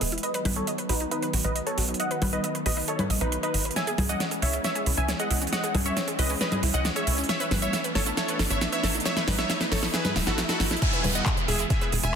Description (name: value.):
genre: uplifting trance.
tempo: 136 BPM.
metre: 4/4.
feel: straight.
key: E major.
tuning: A4 = 441 Hz.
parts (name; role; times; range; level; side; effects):
supersaw stab; melody; 0.0-12.2 s; D#4 to G#5; -30 LUFS; equal; sidechain pumping, low-pass filter, ping-pong delay.
lush unison pad; sustained chords; 0.0-12.2 s; D#3 to C#4; -35 LUFS; equal; chorus, sidechain pumping.
analog pluck; arpeggios; 0.0-12.1 s; C#4 to B5; -34 LUFS; right 3 dB; chorus, sidechain pumping, ping-pong delay.
tight sequencer bass; bass; 0.0-12.2 s; E1 to C#2; -28 LUFS; equal; sidechain pumping.
big-room dance drum kit; drums; 0.0-12.1 s; congas, crash cymbal, handclaps, hi-hat, shaker, snare drum; -28 LUFS; equal; sidechain pumping on hats, sidechain pumping on perc, sidechain pumping on cymbals.
riser and downlifter; sound effects; 0.2-12.2 s; none; -35 LUFS; equal; none.
electronic kick drum; drums; 10.8-11.8 s; none; -27 LUFS; equal; none.
room: light reverb, digital ambience.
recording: dense, heavily limited modern master.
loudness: -23 LUFS.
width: side -7 dB against mid.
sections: 0.0-10.8 A section; 10.8-12.2 B section.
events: build-up 0.0-10.8; filter sweep on supersaw synth 0.0-10.8; filter sweep on synth arpeggio sound 0.0-10.8; riser 0.2-10.8; drum fill 3.8-10.8; drop 10.8-12.2.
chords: 0.2 B; 3.8 C#m; 7.3 Asus2; 10.8 E.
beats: | 0.23 0.67 1.11 1.56 | 2.00 2.44 2.88 3.32 | 3.76 4.20 4.64 5.09 | 5.53 5.97 6.41 6.85 | 7.29 7.73 8.17 8.62 | 9.06 9.50 9.94 10.38 | 10.82 11.26 11.70 12.14.